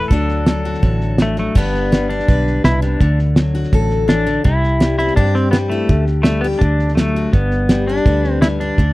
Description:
honky-tonk and classic country; 166 BPM; 4/4; straight; G major; A4 = 440 Hz
pedal steel guitar; melody; 0.0-8.9 s; A3 to B4; -20 LUFS; equal
picked steel-string acoustic guitar; accompaniment; 0.0-8.9 s; G2 to B4; -20 LUFS; left 3 dB
vintage muted fingered electric bass; bass; 0.0-8.9 s; G1 to G2; -18 LUFS; equal
cloth-damped thuddy drum kit; drums; 0.1-8.9 s; crash cymbal, hi-hat, kick drum, snare drum; -15 LUFS; equal
studio reverb; dry, close 1970s-style studio recording; -13 LUFS; side -19 dB against mid
0.0-1.6 A section; 1.6-8.9 A section
0.1 D; 1.6 G; 3.0 D; 4.4 C; 5.9 Dsus4; 6.6 D; 7.3 G

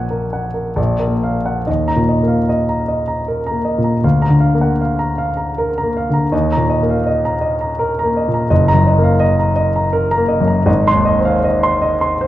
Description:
classical, romantic character piece for solo piano; 64-84 BPM; 3/4; rubato; Eb minor; A4 = 439 Hz
warm grand piano; solo; 0.0-12.3 s; Gb1 to C6; -13 LUFS; equal
wet recital hall reverb, RT60 1.7 s; dark, warm production; -13 LUFS; side -14 dB against mid
0.0-1.7 A section; 1.7-12.3 B section
0.0 Ebm/Bb; 0.8 Bb; 1.7 Eb5; 4.0 Bb/D; 6.3 Eb5; 8.5 Ebm/Gb; 10.7 Fm7/Ab

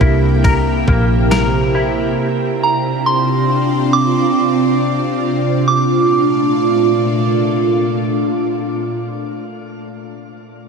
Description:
dream pop; 69 BPM; 4/4; straight; Bb lydian; A4 = 439 Hz
ethereal airy pad; sustained chords; 0.0-9.1 s; Bb2 to G4; -16 LUFS; right 1 dB; ensemble chorus, built-in reverb, phaser
semi-hollow electric guitar; arpeggios; 0.0-2.3 s; C3 to Bb4; -24 LUFS; left 4 dB; ensemble chorus, digital delay
vintage muted fingered electric bass; bass; 0.0-2.1 s; Bb1 to C2; -17 LUFS; equal
clean 12-bit digital drum machine; drums; 0.0-1.5 s; kick drum, ride cymbal, snare drum, tambourine; -17 LUFS; equal
vibraphone with medium hard mallets; texture; 0.0-9.1 s; D4 to C5; -30 LUFS; right 2 dB
soft synth bell; melody; 2.6-9.1 s; Bb5 to D6; -20 LUFS; right 3 dB; chorus, digital delay
moderate shimmer reverb, RT60 7.7 s; -13 LUFS; side -5 dB against mid
0.0-5.7 A section; 5.7-9.1 B section
0.0 C7; 2.2 Dm7; 5.7 Bbmaj7

